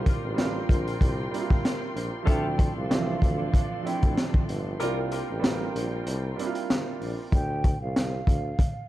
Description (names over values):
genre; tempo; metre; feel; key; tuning
hip hop, boom-bap hip-hop; 95 BPM; 4/4; swing 56% on 16ths; D minor; A4 = 440 Hz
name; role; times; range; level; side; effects
dark grand piano; accompaniment; 0.0-7.3 s; E3 to F4; -32 LUFS; right 6 dB; cassette tape, high-pass filter, low-pass filter
warm studio string section; sustained chords; 0.0-7.3 s; D4 to C6; -38 LUFS; left 3 dB; high-pass filter, low-pass filter
warm tuba; bass; 0.0-8.5 s; G1 to D2; -31 LUFS; left 1 dB; none
crunchy breakbeat drum kit; drums; 0.1-8.8 s; hi-hat, kick drum, snare drum; -25 LUFS; equal; none
mellow hollow concert flute; melody; 2.3-8.9 s; F5 to G5; -35 LUFS; right 2 dB; high-pass filter, low-pass filter, ping-pong delay
warm saxophone section; stabs; 2.3-5.0 s; D4 to Bb4; -37 LUFS; left 3 dB; high-pass filter, low-pass filter, ping-pong delay
room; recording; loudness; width
studio reverb; dark, warm production; -24 LUFS; side -15 dB against mid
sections
0.0-7.3 A section; 7.3-8.9 B section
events
break 4.8-7.3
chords
0.0 C7sus4; 2.3 Dm7; 4.8 C7sus4; 7.3 Dm7